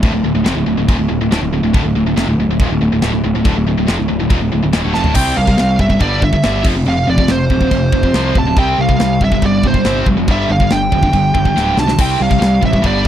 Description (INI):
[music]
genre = heavy metal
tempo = 140 BPM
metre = 4/4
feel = straight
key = D minor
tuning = A4 = 440 Hz
[part]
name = tight distorted guitar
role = riff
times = 0.0-13.1 s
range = D2 to C4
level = -16 LUFS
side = equal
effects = distortion
[part]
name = fuzz picked electric bass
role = bass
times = 0.0-13.1 s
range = D1 to C2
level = -18 LUFS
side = equal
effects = overdrive
[part]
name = tight metal drum kit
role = drums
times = 0.0-13.1 s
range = china cymbal, crash cymbal, kick drum, snare drum, toms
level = -16 LUFS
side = equal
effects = none
[part]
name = high-gain lead guitar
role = melody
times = 4.9-13.1 s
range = C5 to A5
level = -17 LUFS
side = right 2 dB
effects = distortion, tape echo
[sound]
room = little or no reverb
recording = dry, close 1970s-style studio recording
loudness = -12 LUFS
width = side -10 dB against mid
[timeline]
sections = 0.0-5.2 A section; 5.2-13.1 B section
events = drum fill 4.9, 11.6-12.0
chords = 0.0 Dm; 5.2 C5; 6.0 G5; 6.6 F5; 8.6 C5; 10.3 G5; 12.0 C5